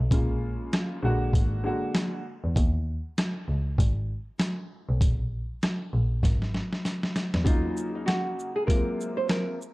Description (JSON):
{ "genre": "hip hop, boom-bap hip-hop", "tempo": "98 BPM", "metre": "4/4", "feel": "swing 59% on 16ths", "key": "unclear", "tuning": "A4 = 441 Hz", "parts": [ { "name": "rich double bass", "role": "bass", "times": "0.0-7.4 s", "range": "Ab1 to E2", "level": "-27 LUFS", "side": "equal", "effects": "none" }, { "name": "dark upright piano", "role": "accompaniment", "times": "0.1-2.2, 7.4-9.5 s", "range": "C3 to Gb4", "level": "-31 LUFS", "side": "left 1 dB", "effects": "cassette tape, high-pass filter, low-pass filter" }, { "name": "trip hop sampler-style drum kit", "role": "drums", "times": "0.1-9.7 s", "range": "hi-hat, kick drum, rim click, shaker, snare drum", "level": "-25 LUFS", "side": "equal", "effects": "none" }, { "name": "nylon-string guitar", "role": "melody", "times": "7.5-9.6 s", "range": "Eb4 to C5", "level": "-30 LUFS", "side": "right 2 dB", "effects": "high-pass filter, low-pass filter, slapback echo" } ], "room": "studio ambience", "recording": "dark, warm production", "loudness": "-25 LUFS", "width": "side -21 dB against mid", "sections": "0.0-7.5 A section; 7.5-9.7 B section", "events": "drum fill 6.2-7.5", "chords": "0.1 Bbm7; 1.0 Bb7b13; 2.6 Dbsus2; 3.8 Abm; 5.0 N.C.; 5.9 Absus2; 7.5 Ebm7; 8.7 Ab13" }